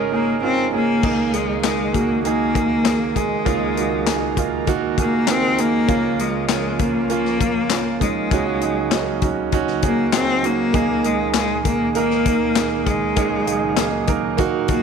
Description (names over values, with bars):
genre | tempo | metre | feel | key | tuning
piano-driven pop | 99 BPM | 4/4 | straight | unclear | A4 = 440 Hz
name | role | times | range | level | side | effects
clear cello | melody | 0.0-14.8 s | Ab3 to C4 | -21 LUFS | left 4 dB | none
clear grand piano | accompaniment | 0.0-14.8 s | Ab1 to Bb4 | -21 LUFS | right 10 dB | none
airy breathy pad | sustained chords | 0.0-14.8 s | Db2 to Bb4 | -28 LUFS | left 1 dB | chorus
modern studio drum kit | drums | 1.0-14.8 s | crash cymbal, handclaps, hi-hat, kick drum, snare drum | -23 LUFS | left 5 dB | none
room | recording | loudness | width
light reverb, small room ambience | 1960s-style stereo | -17 LUFS | side -6 dB against mid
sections
0.0-1.0 A section; 1.0-14.8 B section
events
none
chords
0.0 Absus4; 1.0 Absus2/Db; 5.9 Bbm/Db; 8.3 Ebm7/Db; 10.7 Absus2/Db